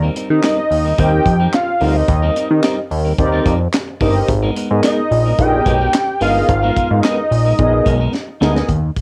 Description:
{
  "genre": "early-eighties boogie funk",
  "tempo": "109 BPM",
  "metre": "4/4",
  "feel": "straight",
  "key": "unclear",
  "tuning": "A4 = 440 Hz",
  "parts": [
    { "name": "clean electric guitar", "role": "riff", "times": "0.0-8.6 s", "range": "G3 to Bb4", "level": "-27 LUFS", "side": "equal", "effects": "subtle chorus, cassette tape" },
    { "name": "fat analog bass", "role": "bass", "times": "0.0-8.9 s", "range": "G1 to Eb3", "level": "-18 LUFS", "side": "equal", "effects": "none" },
    { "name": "tight funk drum kit", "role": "drums", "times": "0.2-9.0 s", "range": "handclaps, hi-hat, kick drum, snare drum", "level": "-23 LUFS", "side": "equal", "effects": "cassette tape" },
    { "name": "mellow synth brass", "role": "accompaniment", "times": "0.3-8.7 s", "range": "Cb4 to Eb5", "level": "-21 LUFS", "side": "equal", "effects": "chorus, cassette tape" },
    { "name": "fat analog lead", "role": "melody", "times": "0.4-8.4 s", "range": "Eb5 to G5", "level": "-20 LUFS", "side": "equal", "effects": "chorus, cassette tape" }
  ],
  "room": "light reverb",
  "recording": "home recording on cassette",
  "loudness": "-15 LUFS",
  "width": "mono",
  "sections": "0.0-8.7 A section",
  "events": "drum fill 8.1-8.7",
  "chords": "0.0 Eb6; 4.3 Abmadd9"
}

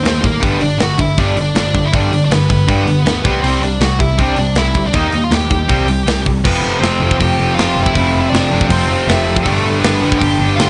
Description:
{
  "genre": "punk rock",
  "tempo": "160 BPM",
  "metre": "4/4",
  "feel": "straight",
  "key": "G major",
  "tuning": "A4 = 440 Hz",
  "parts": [
    { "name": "bluesy overdriven lead guitar", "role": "melody", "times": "0.0-10.7 s", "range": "A3 to G5", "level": "-21 LUFS", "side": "equal", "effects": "distortion" },
    { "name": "cranked stack guitar", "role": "riff", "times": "0.0-10.7 s", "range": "F2 to Eb4", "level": "-21 LUFS", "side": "equal", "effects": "overdrive" },
    { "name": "cranked stack guitar", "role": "riff", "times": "0.0-10.7 s", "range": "F2 to D4", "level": "-22 LUFS", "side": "equal", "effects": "overdrive" },
    { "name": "rich double bass", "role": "bass", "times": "0.0-10.7 s", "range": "F1 to A2", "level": "-21 LUFS", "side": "equal", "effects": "none" },
    { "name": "tight metal drum kit", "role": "drums", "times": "0.1-10.7 s", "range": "crash cymbal, hi-hat, kick drum, snare drum", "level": "-20 LUFS", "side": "equal", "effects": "none" }
  ],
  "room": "little or no reverb",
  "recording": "nothing above 10.3 kHz",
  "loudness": "-14 LUFS",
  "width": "mono",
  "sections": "0.0-6.4 A section; 6.4-10.7 B section",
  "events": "none",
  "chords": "0.4 G; 3.2 C; 4.9 Eb; 5.7 C5; 6.4 F; 9.5 G"
}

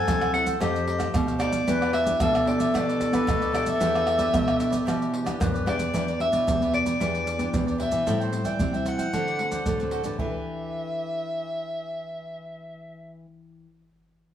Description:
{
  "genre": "samba and choro",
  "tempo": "113 BPM",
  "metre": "4/4",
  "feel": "straight",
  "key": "E minor",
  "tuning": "A4 = 440 Hz",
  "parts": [
    { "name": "warm soprano saxophone", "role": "melody", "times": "0.0-13.3 s", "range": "B4 to G#5", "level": "-28 LUFS", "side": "equal", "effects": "none" },
    { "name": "bright baroque flute", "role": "second line", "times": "0.0-5.9 s", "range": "G4 to B4", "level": "-29 LUFS", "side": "left 5 dB", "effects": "none" },
    { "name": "cavaquinho", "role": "accompaniment", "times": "0.0-13.7 s", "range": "Eb4 to G5", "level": "-35 LUFS", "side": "right 5 dB", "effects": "none" },
    { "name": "nylon-string guitar", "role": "accompaniment", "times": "0.0-13.8 s", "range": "A2 to B4", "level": "-33 LUFS", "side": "left 1 dB", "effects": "none" },
    { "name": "nylon-string guitar", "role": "bass", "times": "0.1-13.3 s", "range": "E2 to E3", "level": "-29 LUFS", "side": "right 1 dB", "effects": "none" },
    { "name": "maracas, surdo, pandeiro and tamborim", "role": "percussion", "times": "0.1-10.3 s", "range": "none", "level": "-29 LUFS", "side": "right 2 dB", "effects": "none" }
  ],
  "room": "wet studio reverb, RT60 0.9 s",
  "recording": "band playing live in one room, faint mains hum",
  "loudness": "-22 LUFS",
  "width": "side -10 dB against mid",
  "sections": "0.0-5.9 A section; 5.9-10.2 B section; 10.2-14.3 C section",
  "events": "none",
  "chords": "0.0 F#m7b5; 0.6 F9; 1.7 Em7; 8.1 Am7; 9.1 D7; 10.2 Em7"
}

